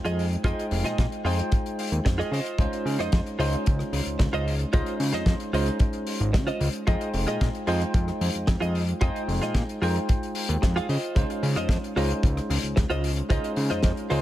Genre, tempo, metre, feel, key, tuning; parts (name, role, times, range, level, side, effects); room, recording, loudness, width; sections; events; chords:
nu-disco, nu disco; 112 BPM; 4/4; straight; A4 = 444 Hz
bell-like tine electric piano; accompaniment; 0.0-14.2 s; Ab3 to G5; -30 LUFS; equal; wide subtle chorus, dub echo
direct-recorded clean electric guitar; riff; 0.0-14.2 s; F4 to F5; -32 LUFS; right 2 dB; analog chorus, dub echo
fat analog bass; bass; 0.0-14.2 s; F1 to Db3; -26 LUFS; equal
damped 70s drum kit; drums; 0.1-14.2 s; hi-hat, rim click, snare drum; -33 LUFS; left 2 dB
kick drum; drums; 0.4-13.9 s; -24 LUFS; equal
small room ambience; echo-heavy mix; -23 LUFS; side -14 dB against mid
0.0-14.2 A section
0.0 Fm7; 2.3 Dbmaj9; 6.9 Fm7; 10.9 Dbmaj9